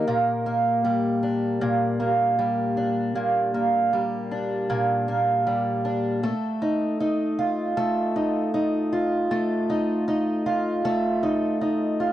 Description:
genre	folktronica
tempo	78 BPM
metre	4/4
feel	straight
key	Bb major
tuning	A4 = 441 Hz
part	fingerpicked twelve-string acoustic guitar	solo	0.0-12.1 s	Bb2 to Bb4	-22 LUFS	right 1 dB	none
room	little or no reverb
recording	dry, close 1970s-style studio recording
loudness	-22 LUFS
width	side -12 dB against mid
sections	0.1-12.1 A section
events	none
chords	0.1 Bb6; 6.2 F7/A

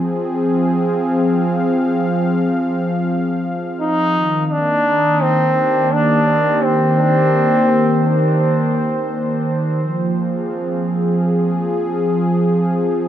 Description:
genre	ambient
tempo	free time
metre	none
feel	none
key	F dorian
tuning	A4 = 440 Hz
part	warm analog pad	sustained chords	0.0-13.1 s	Eb3 to F5	-16 LUFS	equal	chorus
part	brilliant trombone	melody	3.8-8.8 s	C4 to Eb4	-17 LUFS	equal	dub echo
room	moderate spring reverb, RT60 2.6 s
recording	echo-heavy mix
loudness	-14 LUFS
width	side -10 dB against mid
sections	0.0-9.8 A section; 9.8-13.1 B section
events	none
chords	0.0 Fm; 4.2 Eb6; 9.8 Fm

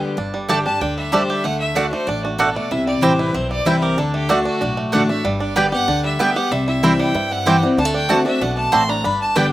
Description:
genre	bluegrass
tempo	189 BPM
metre	4/4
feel	straight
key	G major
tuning	A4 = 441 Hz
part	clear fiddle	melody	0.0-9.5 s	F#4 to C6	-23 LUFS	left 1 dB	none
part	picked steel-string acoustic guitar	accompaniment	0.0-9.5 s	G2 to G4	-20 LUFS	left 2 dB	slapback echo
part	bluegrass banjo	arpeggios	0.2-9.5 s	G3 to G4	-24 LUFS	right 3 dB	slapback echo
part	upright bass	bass	0.2-9.5 s	G1 to G2	-30 LUFS	equal	none
part	mandolin	stabs	0.5-9.5 s	A3 to A5	-18 LUFS	right 3 dB	none
room	little or no reverb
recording	recorded outdoors, with no room sound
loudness	-16 LUFS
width	side -15 dB against mid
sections	0.2-9.5 A section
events	fiddle solo 0.2-9.5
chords	0.2 Gsus2; 1.4 D; 2.7 C; 4.0 D; 5.2 G; 6.5 C; 7.8 D7

